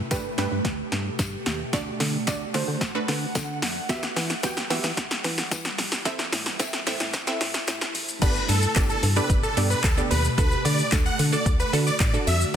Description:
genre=dance-pop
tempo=111 BPM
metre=4/4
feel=straight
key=G major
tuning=A4 = 440 Hz
part: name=ethereal airy pad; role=sustained chords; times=0.0-12.6 s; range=B2 to F#5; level=-33 LUFS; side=right 1 dB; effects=ensemble chorus, built-in reverb, phaser, sidechain pumping
part: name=wide unison pluck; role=accompaniment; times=0.1-12.6 s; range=A3 to G5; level=-30 LUFS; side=right 2 dB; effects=sidechain pumping
part: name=organ-like FM bass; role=bass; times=0.1-12.4 s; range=G1 to E3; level=-27 LUFS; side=equal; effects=sidechain pumping
part: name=deep house drum kit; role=drums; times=0.1-12.5 s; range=crash cymbal, handclaps, hi-hat, kick drum, shaker, snare drum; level=-26 LUFS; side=equal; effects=overdrive
part: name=tambourine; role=percussion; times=0.1-12.6 s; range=none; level=-39 LUFS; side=left 7 dB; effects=none
part: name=supersaw chords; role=melody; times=8.2-12.4 s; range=A4 to F#5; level=-26 LUFS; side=equal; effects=digital delay
room=light reverb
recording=dense, heavily limited modern master, high-pass filter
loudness=-22 LUFS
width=side -9 dB against mid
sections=0.0-8.2 A section; 8.2-12.6 B section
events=build-up 0.0-8.2; drum fill 0.0-8.2; filter sweep 0.0-8.2; drop 8.2-12.6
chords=0.0 Gadd9; 1.7 D; 3.9 Emadd9; 6.1 Am; 8.2 Gadd9; 10.4 D

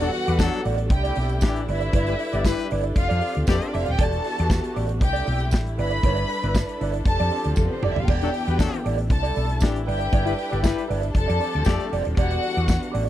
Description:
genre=disco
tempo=117 BPM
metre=4/4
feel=straight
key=E minor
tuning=A4 = 440 Hz
part: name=warm studio violin section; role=second line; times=0.0-12.9 s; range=A3 to B5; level=-29 LUFS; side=left 2 dB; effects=none
part: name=mellow electric guitar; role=accompaniment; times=0.0-13.1 s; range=E4 to D5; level=-29 LUFS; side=right 8 dB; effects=wah
part: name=dark studio string section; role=sustained chords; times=0.0-13.1 s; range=C3 to B4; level=-31 LUFS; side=equal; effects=none
part: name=warm horn section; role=stabs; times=0.0-3.7, 8.2-11.9 s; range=E3 to D5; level=-27 LUFS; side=left 7 dB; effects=none
part: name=hollow-body short-scale fingered electric bass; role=bass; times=0.0-13.1 s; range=D#1 to F2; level=-25 LUFS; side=equal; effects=none
part: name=modern studio drum kit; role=drums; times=0.0-13.1 s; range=crash cymbal, hi-hat, kick drum, snare drum, toms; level=-22 LUFS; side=equal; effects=none
part: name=tambourine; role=percussion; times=0.4-12.8 s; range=none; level=-39 LUFS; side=right 14 dB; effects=none
room=little or no reverb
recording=dry, close 1970s-style studio recording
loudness=-20 LUFS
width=side -13 dB against mid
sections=0.0-13.1 A section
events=drum fill 7.6-8.1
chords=0.0 Em11; 0.9 C69; 1.7 G6; 3.0 F69; 4.0 Em11; 5.0 C69; 5.8 G6; 7.1 F69; 8.1 Em11; 9.1 C69; 9.9 G6; 11.1 F69; 12.2 Em11

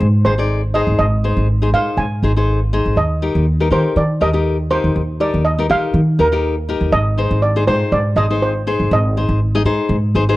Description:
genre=calypso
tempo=121 BPM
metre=4/4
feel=swing 54% on 16ths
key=unclear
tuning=A4 = 442 Hz
part: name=steel pan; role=melody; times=0.0-10.4 s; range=Bb4 to Ab5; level=-19 LUFS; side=right 2 dB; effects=none
part: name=nylon-string guitar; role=accompaniment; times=0.0-10.4 s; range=Eb4 to Eb5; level=-20 LUFS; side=left 4 dB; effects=none
part: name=upright bass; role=bass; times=0.0-10.4 s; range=Ab1 to Eb3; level=-16 LUFS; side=equal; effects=none
room=small room ambience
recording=dry, close 1970s-style studio recording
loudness=-14 LUFS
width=side -17 dB against mid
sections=0.0-10.4 A section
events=none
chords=0.0 Ab; 3.0 Eb; 6.9 Ab

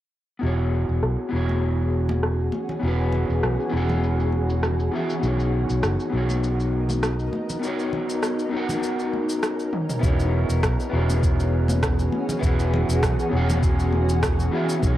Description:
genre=sunset chillout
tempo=100 BPM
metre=4/4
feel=swing 54% on 16ths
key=E lydian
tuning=A4 = 440 Hz
part: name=electric guitar at the edge of break-up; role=accompaniment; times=0.4-15.0 s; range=B3 to F#5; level=-26 LUFS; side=left 1 dB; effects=auto-pan, digital delay
part: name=shimmering ambient pad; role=sustained chords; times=2.0-15.0 s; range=E3 to A#4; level=-29 LUFS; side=right 1 dB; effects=chorus, built-in reverb
part: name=fretless electric bass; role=bass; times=0.4-15.0 s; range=E1 to B1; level=-23 LUFS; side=equal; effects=tube saturation
part: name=deep house drum kit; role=drums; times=0.4-15.0 s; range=cabasa, rim click, toms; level=-29 LUFS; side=equal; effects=overdrive, low-pass filter on perc, low-pass filter on snare, low-pass filter on toms, low-pass filter on room
part: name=congas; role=percussion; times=1.5-14.1 s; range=none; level=-31 LUFS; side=left 1 dB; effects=none
part: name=electronic kick drum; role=drums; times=10.0-15.0 s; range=none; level=-23 LUFS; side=equal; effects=none
room=light reverb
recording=worn, warbling old tape, cassette tape, warbly pitch drift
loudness=-20 LUFS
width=side -13 dB against mid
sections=0.4-10.0 A section; 10.0-15.0 B section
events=filter sweep on drum 0.4-10.0; drum fill 9.7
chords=0.4 E69; 5.2 Bmaj9; 10.0 E69

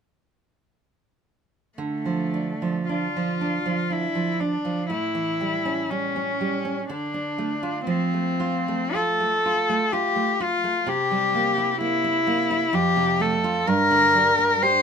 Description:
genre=romantic duo for cello and classical guitar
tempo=51-65 BPM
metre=3/4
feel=rubato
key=D minor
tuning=A4 = 440 Hz
part: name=warm cello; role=melody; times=1.8-14.8 s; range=A3 to C5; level=-22 LUFS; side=left 3 dB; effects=none
part: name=nylon-string guitar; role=accompaniment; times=1.8-14.8 s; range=F2 to G4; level=-26 LUFS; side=right 5 dB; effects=none
room=moderate small room reverb, RT60 0.6 s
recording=minimal, uncompressed stereo recording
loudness=-21 LUFS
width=side -6 dB against mid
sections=1.8-14.8 A section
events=none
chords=1.8 Dm; 4.9 A7; 6.9 Dm; 7.9 F; 10.9 C7; 12.8 F; 13.7 Gm

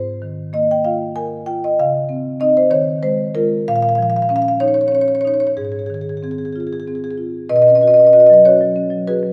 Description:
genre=classical, contemporary piece for solo marimba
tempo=64 BPM (dotted quarters)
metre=6/8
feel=rubato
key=Ab major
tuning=A4 = 437 Hz
part: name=marimba with soft mallets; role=solo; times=0.0-9.3 s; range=Ab2 to Ab5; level=-16 LUFS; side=equal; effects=none
room=wet scoring stage reverb, RT60 2.2 s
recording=none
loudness=-15 LUFS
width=mono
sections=0.0-7.5 A section; 7.5-9.3 B section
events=none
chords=0.0 Ab69; 1.8 Dbmaj9; 2.7 Ebsus24; 3.7 Bbmadd11; 5.6 Ab6; 7.5 Badd9

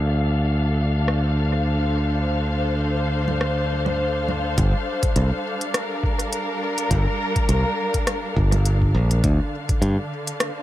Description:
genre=ambient dub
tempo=103 BPM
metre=4/4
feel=swing 55% on 16ths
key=G minor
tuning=A4 = 439 Hz
part: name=muted studio string section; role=sustained chords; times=0.0-10.6 s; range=D3 to F5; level=-25 LUFS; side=left 1 dB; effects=none
part: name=modern bright fingered electric bass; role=bass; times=0.0-10.0 s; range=G1 to G2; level=-20 LUFS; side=equal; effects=none
part: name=organic electronic drum kit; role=drums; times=1.1-10.5 s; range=congas, hi-hat, rim click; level=-28 LUFS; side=equal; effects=overdrive, dub echo
part: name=electronic kick drum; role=drums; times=4.6-9.8 s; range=none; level=-24 LUFS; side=equal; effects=overdrive
room=light reverb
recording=low-pass filter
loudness=-19 LUFS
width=side -14 dB against mid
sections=0.0-4.6 A section; 4.6-10.6 B section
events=none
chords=0.0 Dm7; 4.6 Gm7; 9.2 Dm

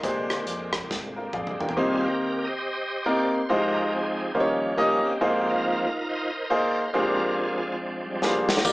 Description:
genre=uptempo gospel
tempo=140 BPM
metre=4/4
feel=swing 62% on 8ths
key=Eb major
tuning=A4 = 443 Hz
part: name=clear grand piano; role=accompaniment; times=0.0-8.7 s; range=Ab2 to G5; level=-24 LUFS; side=equal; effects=none
part: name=bright tonewheel organ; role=sustained chords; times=0.0-8.7 s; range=D3 to F5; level=-29 LUFS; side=right 1 dB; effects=fast rotary speaker, overdrive, chorus vibrato
part: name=fingered electric bass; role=bass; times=0.0-1.7, 8.6-8.7 s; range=Ab1 to F2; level=-41 LUFS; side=equal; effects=none
part: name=modern studio drum kit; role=drums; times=0.0-1.8, 8.2-8.7 s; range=hi-hat, kick drum, ride cymbal, rim click, snare drum, toms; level=-28 LUFS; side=equal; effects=none
part: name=tambourine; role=percussion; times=8.6-8.7 s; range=none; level=-27 LUFS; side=left 2 dB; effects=none
room=moderate large studio reverb, RT60 1.2 s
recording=band playing live in one room, small speaker sound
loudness=-23 LUFS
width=side -21 dB against mid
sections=0.0-1.8 A section; 1.8-8.7 B section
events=drum fill 0.9-1.8, 8.2-8.7; grand piano fill 1.1-1.8; tonewheel organ solo 1.8-8.7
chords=0.0 Bb13; 1.8 Eb6; 3.5 Fm9; 4.4 Eb7; 5.2 Ab69; 6.9 Bb13

